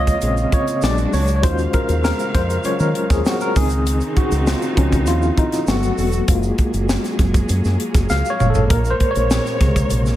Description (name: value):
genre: polished 1980s jazz-funk pop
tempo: 99 BPM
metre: 4/4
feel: straight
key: Bb minor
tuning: A4 = 440 Hz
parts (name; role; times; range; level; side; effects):
- barky tine electric piano; accompaniment; 0.0-10.2 s; C3 to F5; -20 LUFS; left 1 dB; overdrive, fast tremolo, wide subtle chorus
- warm symphonic string section; sustained chords; 0.0-10.2 s; Bb2 to F5; -28 LUFS; right 2 dB; none
- fingered electric bass with an envelope filter; bass; 0.0-10.1 s; E1 to Eb3; -20 LUFS; equal; none
- crisp fusion drum kit; drums; 0.1-10.1 s; hi-hat, kick drum, snare drum, toms; -20 LUFS; equal; gated reverb
- tube shaker; percussion; 0.1-10.2 s; none; -36 LUFS; right 8 dB; none
room: small room ambience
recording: none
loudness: -15 LUFS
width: side -13 dB against mid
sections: 0.0-10.2 A section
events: tine electric piano solo 0.0-10.2; drum fill 8.1-8.7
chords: 0.0 Bbm9; 0.8 Bb7alt; 1.4 Ebm11; 3.6 Dbmaj9; 5.7 Gmaj9; 6.3 Gbmaj9; 8.7 Bbm9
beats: 0.23 0.83 | 1.44 2.04 2.65 3.26 | 3.86 4.47 5.07 5.68 | 6.28 6.89 7.49 8.10 | 8.70 9.31 9.91